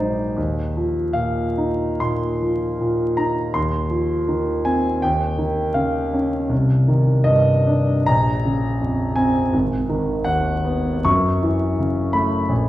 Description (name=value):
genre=classical, impressionist solo piano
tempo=67-85 BPM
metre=4/4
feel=rubato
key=unclear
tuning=A4 = 438 Hz
part: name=clear concert grand piano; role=solo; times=0.0-12.7 s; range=Ab1 to Db6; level=-18 LUFS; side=equal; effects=none
room=wet recital hall reverb, RT60 1.5 s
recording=heard from further back in the room, vinyl crackle, nothing above 10.5 kHz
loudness=-18 LUFS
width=side -14 dB against mid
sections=0.0-12.7 A section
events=none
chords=0.4 Ebsus2; 3.5 F5/Eb; 5.0 Dbadd9/Eb; 6.5 Cmadd9; 8.1 Bbmadd9; 9.5 Abm7; 11.1 Gbm7